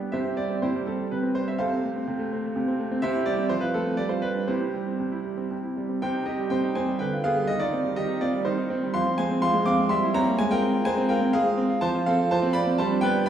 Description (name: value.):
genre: classical-period piano sonatina.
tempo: 124 BPM.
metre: 3/4.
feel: rubato.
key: C major, C minor from 6.0 s.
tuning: A4 = 439 Hz.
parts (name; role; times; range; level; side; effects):
bright concert grand piano; solo; 0.0-13.3 s; C3 to D6; -23 LUFS; right 1 dB; none.
room: wet recital hall reverb, RT60 1.8 s.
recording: heard from further back in the room, small room ambience.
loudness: -23 LUFS.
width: side -9 dB against mid.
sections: 0.0-6.0 A section; 6.0-13.3 B section.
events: none.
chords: 0.1 C; 1.6 F/C; 3.0 C; 3.5 F; 4.0 G7; 4.5 C; 6.0 Cm; 7.0 G7/D; 7.5 Cm/Eb; 8.9 Fm; 9.9 C7/G; 10.4 Fm/Ab; 11.8 F; 12.8 G.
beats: | 0.12 0.62 1.11 | 1.59 2.07 2.55 | 3.02 3.50 3.99 | 4.49 5.01 5.52 | 6.03 6.52 7.01 | 7.49 7.98 8.47 | 8.95 9.43 9.91 | 10.39 10.87 11.34 | 11.82 12.30 12.78 | 13.26.